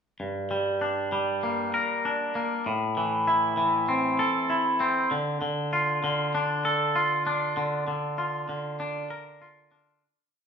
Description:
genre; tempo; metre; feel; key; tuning
rock; 98 BPM; 4/4; straight; G dorian; A4 = 441 Hz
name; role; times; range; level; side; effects
twangy electric guitar; solo; 0.2-10.0 s; G2 to Bb4; -24 LUFS; equal; none
room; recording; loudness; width
wet large studio reverb, RT60 0.9 s; band playing live in one room; -24 LUFS; side -6 dB against mid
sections
0.2-10.0 A section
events
fade-out 7.6-10.0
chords
0.2 Gm; 2.7 Am; 5.1 Dm; 7.6 Bb/D

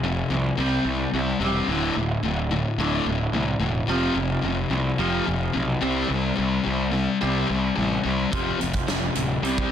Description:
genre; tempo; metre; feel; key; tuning
quiet-loud alternative rock; 108 BPM; 4/4; straight; unclear; A4 = 440 Hz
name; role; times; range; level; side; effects
clean electric guitar; arpeggios; 0.0-9.7 s; D2 to C4; -29 LUFS; right 3 dB; phaser, analog delay, plate reverb
thick fuzz guitar; riff; 0.0-9.7 s; D2 to C4; -24 LUFS; left 5 dB; distortion
fuzz picked electric bass; bass; 0.0-9.6 s; D1 to C2; -27 LUFS; right 2 dB; overdrive
huge arena drum kit; drums; 8.3-9.7 s; hi-hat, kick drum, snare drum; -27 LUFS; right 2 dB; none
room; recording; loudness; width
light reverb; dense, heavily limited modern master; -21 LUFS; side -9 dB against mid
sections
0.0-9.7 A section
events
none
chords
0.0 F5; 0.6 C; 1.7 D5; 3.9 F5; 5.8 C5; 8.3 F5

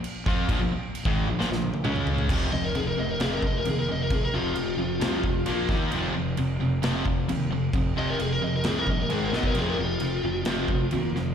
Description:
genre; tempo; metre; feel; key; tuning
hard rock; 132 BPM; 4/4; straight; F minor; A4 = 444 Hz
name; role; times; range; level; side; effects
big rock drum kit; drums; 0.0-11.2 s; crash cymbal, kick drum, snare drum, toms; -30 LUFS; equal; none
crunchy overdriven guitar; riff; 0.3-11.3 s; F2 to F4; -30 LUFS; left 9 dB; slapback echo
overdriven electric guitar; riff; 0.3-11.3 s; F2 to F4; -30 LUFS; right 8 dB; slapback echo
fuzz fingered electric bass; bass; 0.3-11.3 s; F1 to F2; -31 LUFS; equal; overdrive
biting lead guitar; melody; 2.5-11.1 s; F4 to Eb5; -29 LUFS; left 2 dB; overdrive, slapback echo
room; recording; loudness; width
little or no reverb; live gig heard through the venue's PA, recital hall reverb; -23 LUFS; side -8 dB against mid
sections
0.0-2.3 A section; 2.3-11.3 B section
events
drum fill 1.4-2.3, 9.3; lead electric guitar solo 2.3-11.3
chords
0.0 Bb5; 1.8 Db5; 2.3 F5; 5.5 Bb5; 5.7 Eb5; 5.9 F5; 9.1 Ab5; 9.3 B5; 9.6 F5

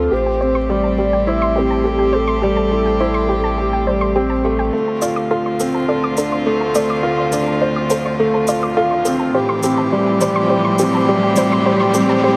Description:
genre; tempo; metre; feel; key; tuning
piano and strings electronica; 104 BPM; 4/4; straight; unclear; A4 = 440 Hz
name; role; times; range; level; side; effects
warm velvety synth lead; melody; 0.0-4.2 s; G4 to E5; -22 LUFS; equal; chorus, delay
rich string quartet; sustained chords; 0.0-12.4 s; D2 to G4; -24 LUFS; equal; none
soft round pluck; arpeggios; 0.0-12.3 s; G4 to D6; -25 LUFS; equal; chorus, delay
dark grand piano; riff; 0.0-12.4 s; G3 to C5; -20 LUFS; equal; delay
warm sub bass; bass; 0.0-4.7 s; A1; -26 LUFS; equal; tube saturation
riser; sound effects; 7.4-12.4 s; none; -28 LUFS; equal; none
shaker; drums; 5.0-12.1 s; none; -32 LUFS; equal; high-pass filter on perc, low-pass filter on perc, high-pass filter on room, low-pass filter on room
room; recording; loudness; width
moderate huge ambient reverb, RT60 4.0 s; none; -17 LUFS; mono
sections
0.0-4.7 A section; 4.7-12.4 B section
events
build-up 4.7-12.4; filter sweep on synth arpeggio sound 4.7-12.4; riser 7.4-12.4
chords
0.1 Am7; 4.7 Dm7; 9.3 Am7

